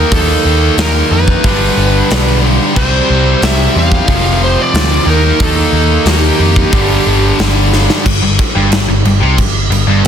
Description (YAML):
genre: hard rock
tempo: 91 BPM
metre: 4/4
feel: straight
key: unclear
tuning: A4 = 440 Hz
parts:
  - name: smooth overdriven lead guitar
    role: melody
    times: 0.0-7.4 s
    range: G4 to F5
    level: -17 LUFS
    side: right 2 dB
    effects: slapback echo
  - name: distorted electric guitar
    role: riff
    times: 0.0-10.0 s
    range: G2 to F4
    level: -20 LUFS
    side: equal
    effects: overdrive
  - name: overdriven electric guitar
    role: riff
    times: 0.0-10.1 s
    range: F2 to Eb4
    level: -17 LUFS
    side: right 10 dB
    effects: none
  - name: tight distorted guitar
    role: riff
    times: 0.0-10.1 s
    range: F2 to Eb4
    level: -17 LUFS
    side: left 12 dB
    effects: distortion
  - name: picked electric bass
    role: bass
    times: 0.0-10.1 s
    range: F1 to F2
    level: -13 LUFS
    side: equal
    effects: none
  - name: big rock drum kit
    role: drums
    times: 0.1-10.1 s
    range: crash cymbal, hi-hat, kick drum, snare drum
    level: -15 LUFS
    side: equal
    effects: none
room: light reverb, small room ambience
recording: dense, heavily limited modern master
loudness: -9 LUFS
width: side -8 dB against mid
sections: 0.0-8.1 A section; 8.1-10.1 B section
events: drum fill 7.7-8.1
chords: 0.0 Eb; 1.4 G; 2.8 C; 4.1 F; 5.1 Eb; 6.7 G; 8.1 Fsus2 (rootless)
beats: | 0.12 0.78 1.44 2.10 | 2.77 3.43 4.09 4.75 | 5.42 6.08 6.74 7.40 | 8.06 8.73 9.39 10.05